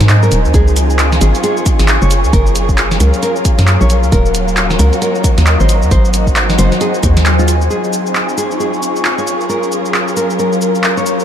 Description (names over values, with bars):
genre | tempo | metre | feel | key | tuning
UK garage, two-step garage | 134 BPM | 4/4 | swing 60% on 16ths | Db major | A4 = 440 Hz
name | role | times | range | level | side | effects
dark studio violin section | sustained chords | 0.0-11.2 s | Bb3 to Bb4 | -20 LUFS | equal | sidechain pumping
hollow knocking FM bass | bass | 0.0-7.7 s | Eb1 to Ab2 | -12 LUFS | equal | sidechain pumping
punchy analog drum machine | drums | 0.0-11.2 s | handclaps, hi-hat, shaker, snare drum | -18 LUFS | equal | none
warbly tape-like pad | texture | 0.0-11.2 s | Gb3 to Db6 | -18 LUFS | left 1 dB | chorus, built-in reverb, sidechain pumping
nylon-string guitar | melody | 0.2-11.1 s | F4 to Db5 | -20 LUFS | equal | analog delay
electronic kick drum | drums | 0.5-7.1 s | none | -13 LUFS | equal | none
room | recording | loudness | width
moderate cathedral reverb, RT60 6.2 s | dreamy mix soaked in reverb | -10 LUFS | side -9 dB against mid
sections
0.0-7.7 A section; 7.7-11.2 B section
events
none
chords
0.0 Ab7; 0.5 Dbmaj7; 2.1 Gbmaj9; 4.1 Ebm7; 5.7 Ab7; 7.7 Dbmaj7; 9.3 Gbmaj9